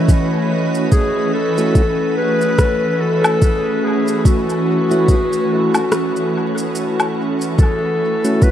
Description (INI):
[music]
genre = ambient dub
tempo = 72 BPM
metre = 4/4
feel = swing 58% on 16ths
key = F# minor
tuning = A4 = 440 Hz
[part]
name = warm clarinet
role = melody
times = 0.0-8.5 s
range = F#4 to C#5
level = -19 LUFS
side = left 1 dB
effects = dub echo
[part]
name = soft additive organ-like pad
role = sustained chords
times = 0.0-8.5 s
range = E3 to B4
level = -19 LUFS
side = right 1 dB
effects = ensemble chorus, built-in reverb
[part]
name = electronic kick drum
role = drums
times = 0.1-8.5 s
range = none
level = -13 LUFS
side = equal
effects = overdrive, studio reverb
[part]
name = electronic shaker, rim click and woodblock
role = drums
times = 0.1-8.5 s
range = none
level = -24 LUFS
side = left 1 dB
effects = overdrive, studio reverb, dub echo
[part]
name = tonewheel organ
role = stabs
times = 1.6-8.5 s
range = A3 to F#4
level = -24 LUFS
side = right 1 dB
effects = slow rotary speaker, dub echo
[sound]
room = moderate concert hall reverb, RT60 2.1 s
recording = vinyl crackle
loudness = -14 LUFS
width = side -10 dB against mid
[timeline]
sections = 0.0-7.6 A section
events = break 5.9-7.6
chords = 0.0 F#m7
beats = 0.09 | 0.92 1.75 2.59 3.42 | 4.25 5.09 5.92 6.75 | 7.59 8.42